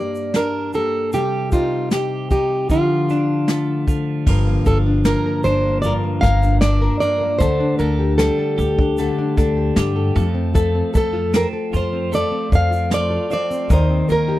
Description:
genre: acoustic pop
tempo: 76 BPM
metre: 4/4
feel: straight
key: G minor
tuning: A4 = 440 Hz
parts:
  - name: fingerpicked plugged-in steel-string acoustic guitar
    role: melody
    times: 0.0-14.4 s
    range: F4 to F5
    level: -21 LUFS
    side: right 1 dB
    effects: none
  - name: nylon-string guitar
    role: accompaniment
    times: 0.0-14.4 s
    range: G2 to Bb4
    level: -21 LUFS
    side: left 3 dB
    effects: none
  - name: twelve-string electric guitar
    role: arpeggios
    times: 0.0-14.4 s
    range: Eb3 to G4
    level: -28 LUFS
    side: right 8 dB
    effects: none
  - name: jazz brush drum kit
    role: drums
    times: 0.2-14.3 s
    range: crash cymbal, kick drum, shaker, snare drum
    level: -19 LUFS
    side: equal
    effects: none
  - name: upright bass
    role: bass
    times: 4.3-14.4 s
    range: G1 to G2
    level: -20 LUFS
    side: equal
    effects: none
room: little or no reverb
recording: dry, close 1970s-style studio recording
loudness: -16 LUFS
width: side -15 dB against mid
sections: 0.0-4.3 A section; 4.3-14.4 B section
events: none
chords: 0.0 Gm; 1.1 Cm; 2.7 Dm; 4.3 Gm7; 7.4 Dsus4; 10.2 F; 13.7 Cm7/Eb

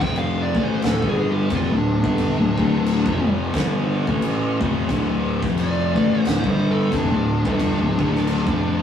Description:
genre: stoner and doom metal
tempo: 89 BPM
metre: 4/4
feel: swing 58% on 8ths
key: D minor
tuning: A4 = 441 Hz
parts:
  - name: fuzz lead guitar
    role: melody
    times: 0.0-8.8 s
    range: D4 to G5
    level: -26 LUFS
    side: equal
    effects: distortion
  - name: fuzz guitar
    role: riff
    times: 0.0-8.8 s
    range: D2 to A3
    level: -29 LUFS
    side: left 2 dB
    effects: none
  - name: thick fuzz guitar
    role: riff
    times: 0.0-8.8 s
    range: D2 to A3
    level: -26 LUFS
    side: left 6 dB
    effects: distortion
  - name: thick fuzz guitar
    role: riff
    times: 0.0-8.8 s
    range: D2 to A3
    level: -25 LUFS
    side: right 3 dB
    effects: distortion
  - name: fuzz picked electric bass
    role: bass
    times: 0.0-8.8 s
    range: D1 to A1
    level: -24 LUFS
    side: left 1 dB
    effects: overdrive, tube saturation
  - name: oversized low-tuned drum kit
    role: drums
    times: 0.0-8.7 s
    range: crash cymbal, kick drum, snare drum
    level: -25 LUFS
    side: left 1 dB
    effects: none
room: moderate stone room reverb, RT60 1.3 s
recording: rough rehearsal-room recording, warm saturation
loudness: -18 LUFS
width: side -8 dB against mid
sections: 0.0-8.8 A section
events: lead electric guitar solo 0.0-8.8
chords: 0.0 Dm

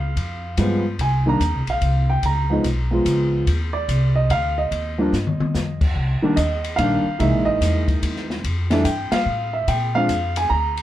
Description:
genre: jazz piano trio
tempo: 145 BPM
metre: 3/4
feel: swing 65% on 8ths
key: Eb major, C minor from 6.0 s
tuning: A4 = 440 Hz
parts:
  - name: warm upright piano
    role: melody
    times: 0.0-10.8 s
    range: Eb3 to Bb5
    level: -21 LUFS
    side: right 1 dB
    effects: none
  - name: upright bass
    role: bass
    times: 0.0-10.8 s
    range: G#1 to Bb2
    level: -22 LUFS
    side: equal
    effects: none
  - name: open jazz drum kit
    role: drums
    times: 0.2-10.8 s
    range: crash cymbal, hi-hat, kick drum, ride cymbal, snare drum, toms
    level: -27 LUFS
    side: left 2 dB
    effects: none
room: moderate studio ambience, RT60 0.5 s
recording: none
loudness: -18 LUFS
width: side -13 dB against mid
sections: 0.0-6.0 A section; 6.0-10.8 B section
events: drum fill 5.1-5.5; band accent 9.1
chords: 0.0 Db7#11; 1.0 C7(no3); 2.2 Db7; 3.5 Ebmaj9; 6.0 Cm7; 7.2 C7alt; 8.4 Fmaj9; 9.7 Bb7

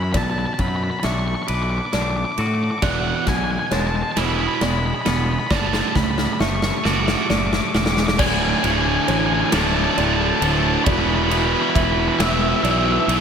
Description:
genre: post-rock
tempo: 45 BPM (dotted quarters)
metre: 6/8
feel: straight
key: D lydian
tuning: A4 = 438 Hz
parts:
  - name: octave-fuzz lead guitar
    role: melody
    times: 0.0-13.1 s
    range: E5 to D6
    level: -24 LUFS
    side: equal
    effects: distortion, analog delay
  - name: felt-muted upright piano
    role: arpeggios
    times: 0.0-13.2 s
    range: C#5 to E5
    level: -32 LUFS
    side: right 2 dB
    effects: wide subtle chorus, analog delay
  - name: twangy electric guitar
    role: arpeggios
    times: 0.0-8.2 s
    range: D2 to B4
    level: -29 LUFS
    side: left 2 dB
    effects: analog delay
  - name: fuzz fingered electric bass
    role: bass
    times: 0.0-13.2 s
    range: D1 to A2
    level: -24 LUFS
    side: equal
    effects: overdrive
  - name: huge arena drum kit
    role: drums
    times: 0.1-13.2 s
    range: crash cymbal, kick drum, ride cymbal, snare drum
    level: -24 LUFS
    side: left 1 dB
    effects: none
  - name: biting overdriven guitar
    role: riff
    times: 2.8-13.2 s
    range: D2 to E3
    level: -23 LUFS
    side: right 9 dB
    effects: none
  - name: tight distorted guitar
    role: riff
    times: 8.2-13.2 s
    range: D2 to E3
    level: -23 LUFS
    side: left 10 dB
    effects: distortion
room: moderate huge ambient reverb, RT60 5.5 s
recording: dreamy mix soaked in reverb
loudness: -17 LUFS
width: side -7 dB against mid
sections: 0.0-8.2 A section; 8.2-13.2 B section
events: build-up 0.0-8.2; drum fill 0.0-8.2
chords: 0.1 Bm; 2.8 E; 5.5 D/F#; 8.2 D5; 10.9 E5

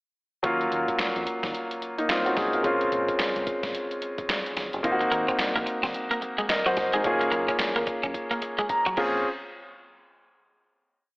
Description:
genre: R&B, new jack swing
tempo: 109 BPM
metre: 4/4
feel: swing 60% on 16ths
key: unclear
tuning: A4 = 440 Hz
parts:
  - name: warm concert grand piano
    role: accompaniment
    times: 0.4-9.3 s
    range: Gb3 to Bb5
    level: -25 LUFS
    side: equal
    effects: none
  - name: deep dub fingered electric bass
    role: bass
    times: 0.4-9.2 s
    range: F1 to F2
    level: -39 LUFS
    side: equal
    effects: none
  - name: dusty soul sampler-style drum kit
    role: drums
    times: 0.4-9.1 s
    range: crash cymbal, handclaps, hi-hat, kick drum, snare drum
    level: -30 LUFS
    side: equal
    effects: gated reverb
  - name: twelve-string electric guitar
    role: riff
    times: 5.0-9.1 s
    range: Gb3 to Db4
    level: -29 LUFS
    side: equal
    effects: lush chorus
room: moderate echo chamber reverb, RT60 1.9 s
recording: telephone sound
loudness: -24 LUFS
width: side -30 dB against mid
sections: 0.4-9.2 verse; 9.2-11.2 final hit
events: drum fill 8.1-9.2; grand piano fill 8.4-9.2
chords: 0.4 Ebm7; 2.6 Bbm7; 4.8 Ab7; 7.0 Gbmaj7; 9.0 Bbm7; 9.2 N.C.

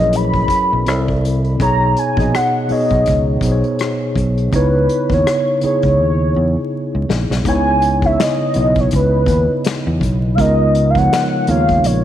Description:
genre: R&B, neo-soul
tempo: 82 BPM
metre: 4/4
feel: swing 58% on 16ths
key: C# dorian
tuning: A4 = 440 Hz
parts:
  - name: warm velvety synth lead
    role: melody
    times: 0.0-12.0 s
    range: B4 to B5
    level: -18 LUFS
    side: equal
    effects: chorus
  - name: mellow tine electric piano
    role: accompaniment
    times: 0.0-12.0 s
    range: B2 to D#5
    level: -18 LUFS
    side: equal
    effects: medium stereo tremolo
  - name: fingered electric bass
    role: bass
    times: 0.0-12.0 s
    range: A#1 to E2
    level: -17 LUFS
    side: equal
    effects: none
  - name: unplugged drum kit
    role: drums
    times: 0.1-12.0 s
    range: finger snaps, hi-hat, kick drum, rim click, snare drum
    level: -22 LUFS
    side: left 2 dB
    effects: none
room: light reverb, studio reverb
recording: 1960s-style stereo, vinyl crackle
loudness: -13 LUFS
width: side -11 dB against mid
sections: 0.0-7.5 A section; 7.5-12.0 B section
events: drum fill 6.0-7.5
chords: 0.0 F#7sus4; 0.9 C69; 1.6 B69; 4.5 C#m9; 7.5 C#m7; 10.4 C#13

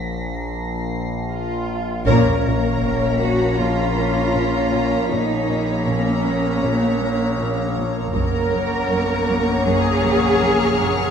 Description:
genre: cinematic, suspense film score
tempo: 79 BPM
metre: 4/4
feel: straight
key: Bb minor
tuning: A4 = 440 Hz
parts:
  - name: overtone-sweeping drone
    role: drone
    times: 0.0-11.1 s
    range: Bb1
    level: -26 LUFS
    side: left 2 dB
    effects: chorus, built-in reverb
  - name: rich studio violin section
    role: texture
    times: 0.0-11.1 s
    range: Bb5 to Cb7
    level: -31 LUFS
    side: left 3 dB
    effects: none
  - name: warm studio cello section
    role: bass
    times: 1.3-11.1 s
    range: Db4 to Bb4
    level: -23 LUFS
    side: right 2 dB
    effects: none
  - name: rich studio violin section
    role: melody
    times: 2.1-11.1 s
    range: Bb5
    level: -34 LUFS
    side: left 2 dB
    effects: none
  - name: warm studio violin section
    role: second line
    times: 2.1-11.1 s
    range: Db5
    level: -27 LUFS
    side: left 3 dB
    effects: none
  - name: warm studio viola section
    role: accompaniment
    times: 2.1-11.1 s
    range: Bb3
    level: -26 LUFS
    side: equal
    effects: none
  - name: glass harmonica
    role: sustained chords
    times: 2.1-11.1 s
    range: Bb4 to Gb5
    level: -30 LUFS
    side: right 1 dB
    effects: none
  - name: mellow French horn section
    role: sustained chords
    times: 2.1-11.0 s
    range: Bb3 to Db4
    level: -26 LUFS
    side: left 4 dB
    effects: none
  - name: warm studio cello section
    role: riff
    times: 2.1-11.0 s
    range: Gb2 to Bb3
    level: -26 LUFS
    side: right 1 dB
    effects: none
  - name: rich studio double bass section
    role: bass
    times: 2.1-11.1 s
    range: Gb1 to Bb1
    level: -26 LUFS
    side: right 4 dB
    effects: none
  - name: taiko ensemble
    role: drums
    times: 2.1-3.5, 8.1-9.6 s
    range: none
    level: -28 LUFS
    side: left 1 dB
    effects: none
  - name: sub drop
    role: sound effects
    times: 2.1-5.1 s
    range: none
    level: -28 LUFS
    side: left 1 dB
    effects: none
room: moderate scoring stage reverb, RT60 1.9 s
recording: none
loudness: -17 LUFS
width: side -7 dB against mid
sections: 0.0-2.1 A section; 2.1-11.1 A section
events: break 0.0-2.1; band accent 2.1-2.8; impact 2.1-5.1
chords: 0.0 N.C.; 2.1 Bbm; 8.1 Gb

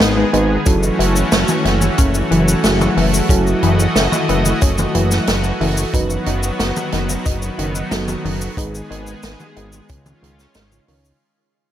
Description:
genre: synthwave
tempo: 91 BPM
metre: 4/4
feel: straight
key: F# dorian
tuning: A4 = 440 Hz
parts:
  - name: lush unison pad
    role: sustained chords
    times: 0.0-11.2 s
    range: D#3 to D#5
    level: -21 LUFS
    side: equal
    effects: chorus, vintage 12-bit sampler grit, sidechain pumping
  - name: analog pluck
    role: arpeggios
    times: 0.0-11.1 s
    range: D#3 to D#4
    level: -23 LUFS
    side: left 2 dB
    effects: chorus, phaser, vintage 12-bit sampler grit, tape echo
  - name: fat analog bass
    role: bass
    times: 0.0-11.1 s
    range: F#1 to C#2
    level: -19 LUFS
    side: equal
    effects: tube saturation
  - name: swinging big-band drum kit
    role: drums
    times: 0.0-11.2 s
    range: cabasa, hi-hat, snare drum, toms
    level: -21 LUFS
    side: equal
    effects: none
  - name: mellow FM electric piano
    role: stabs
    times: 0.2-11.2 s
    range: C#3 to C#5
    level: -23 LUFS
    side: right 1 dB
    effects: chorus, tape echo
  - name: kick drum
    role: drums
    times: 0.7-10.0 s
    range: none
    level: -17 LUFS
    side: equal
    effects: none
room: light reverb, studio ambience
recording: none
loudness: -14 LUFS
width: side -11 dB against mid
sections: 0.0-11.2 A section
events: fade-out 4.2-11.2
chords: 0.0 G#m; 0.7 F#m7; 5.9 B/F#; 8.6 G#m; 9.9 C#add9

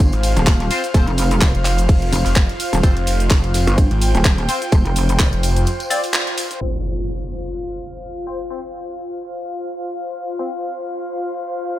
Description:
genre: bass house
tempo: 127 BPM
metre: 4/4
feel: swing 56% on 16ths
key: unclear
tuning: A4 = 442 Hz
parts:
  - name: pulsing pluck wobble bass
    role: bass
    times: 0.0-5.3 s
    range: Eb1 to G1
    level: -18 LUFS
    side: equal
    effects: chorus, overdrive, sidechain pumping
  - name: electronic kick drum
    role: drums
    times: 0.0-5.3 s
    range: none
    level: -14 LUFS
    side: equal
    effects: small room reverb
  - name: garage drum kit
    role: drums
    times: 0.0-11.8 s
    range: cabasa, handclaps, hi-hat, ride cymbal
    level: -23 LUFS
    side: equal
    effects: low-pass filter on hats, small room reverb, low-pass filter on cymbals, low-pass filter on perc, low-pass filter on snare
  - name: warm soul drum kit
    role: drums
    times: 0.0-6.6 s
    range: hi-hat, snare drum, tambourine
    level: -34 LUFS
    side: left 1 dB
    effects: none
  - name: airy breathy pad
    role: texture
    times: 0.0-11.8 s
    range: F4 to G5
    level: -25 LUFS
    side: equal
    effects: chorus, sidechain pumping
  - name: phased detuned saw bass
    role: bass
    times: 0.1-5.7 s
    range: F1 to Ab1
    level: -18 LUFS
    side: equal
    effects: phaser, overdrive, sidechain pumping
  - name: band-passed chord stab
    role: stabs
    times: 0.7-10.5 s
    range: C4 to D5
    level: -26 LUFS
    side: left 2 dB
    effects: phaser, lush chorus, vintage 12-bit sampler grit, sidechain pumping, tape echo
  - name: impact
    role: sound effects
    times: 6.6-8.5 s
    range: none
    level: -27 LUFS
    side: equal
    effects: none
room: digital ambience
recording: low-pass filter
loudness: -16 LUFS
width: side -14 dB against mid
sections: 0.0-6.6 A section; 6.6-11.8 B section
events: drop 0.0-6.6; break 5.7-6.6; band accent 6.1; impact 6.6-8.5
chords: 0.0 F5

